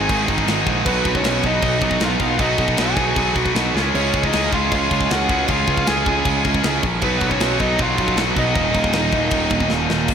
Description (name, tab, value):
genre	heavy metal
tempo	156 BPM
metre	4/4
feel	straight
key	unclear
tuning	A4 = 440 Hz
part	bluesy overdriven lead guitar	melody	0.0-9.7 s	B4 to Ab5	-25 LUFS	equal	distortion, ping-pong delay
part	high-gain lead guitar	second line	0.0-9.7 s	B3 to Ab4	-28 LUFS	right 2 dB	distortion
part	pipe organ, trumpet	sustained chords	0.0-10.1 s	Eb3 to Db6	-34 LUFS	left 2 dB	none
part	heavy high-gain guitar	riff	0.0-10.1 s	Eb2 to Db4	-26 LUFS	equal	distortion
part	high-gain distorted guitar	riff	0.0-10.1 s	Bb3 to Ab4	-24 LUFS	left 19 dB	distortion
part	tight distorted guitar	riff	0.0-10.1 s	Eb2 to Db4	-24 LUFS	right 12 dB	distortion
part	fuzz picked electric bass	bass	0.0-10.1 s	Eb1 to Db2	-23 LUFS	left 1 dB	overdrive
part	tight metal drum kit	drums	0.1-10.1 s	crash cymbal, kick drum, snare drum	-23 LUFS	equal	none
room	little or no reverb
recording	none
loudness	-16 LUFS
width	side -7 dB against mid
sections	0.0-10.1 A section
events	drum fill 3.7, 9.7-10.1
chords	0.0 Ab; 0.9 B; 3.7 Db; 7.0 B; 8.6 Ebm